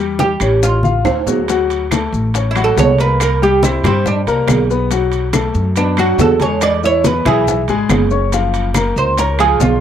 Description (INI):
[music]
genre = Afro-Cuban jazz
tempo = 140 BPM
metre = 4/4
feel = straight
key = unclear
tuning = A4 = 442 Hz
[part]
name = warm baby grand piano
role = accompaniment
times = 0.0-9.7 s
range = E3 to C#6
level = -18 LUFS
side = left 8 dB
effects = none
[part]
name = upright bass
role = bass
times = 0.0-9.8 s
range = F#1 to G2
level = -18 LUFS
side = equal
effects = none
[part]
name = oud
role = melody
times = 0.2-9.8 s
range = C4 to D5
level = -16 LUFS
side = right 5 dB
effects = none
[part]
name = bongos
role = percussion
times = 0.2-9.8 s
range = none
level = -23 LUFS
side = left 8 dB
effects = none
[part]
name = congas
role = percussion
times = 0.2-9.8 s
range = none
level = -21 LUFS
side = left 1 dB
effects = none
[part]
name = maracas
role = percussion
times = 0.2-9.8 s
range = none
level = -29 LUFS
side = left 14 dB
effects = none
[part]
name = claves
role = percussion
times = 0.4-9.6 s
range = none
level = -27 LUFS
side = left 4 dB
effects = none
[part]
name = timbales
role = percussion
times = 0.4-9.8 s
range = none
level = -21 LUFS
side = right 8 dB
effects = none
[sound]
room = light reverb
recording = dry, close 1970s-style studio recording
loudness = -12 LUFS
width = side -9 dB against mid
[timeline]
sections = 0.0-1.5 A section; 1.5-9.8 B section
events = drum fill 0.8-1.5; oud solo 1.5-9.8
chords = 0.0 Em; 0.6 Aaug; 1.5 Dmaj7; 3.2 C5; 4.9 B5; 6.6 Eadd9; 8.3 F#maj7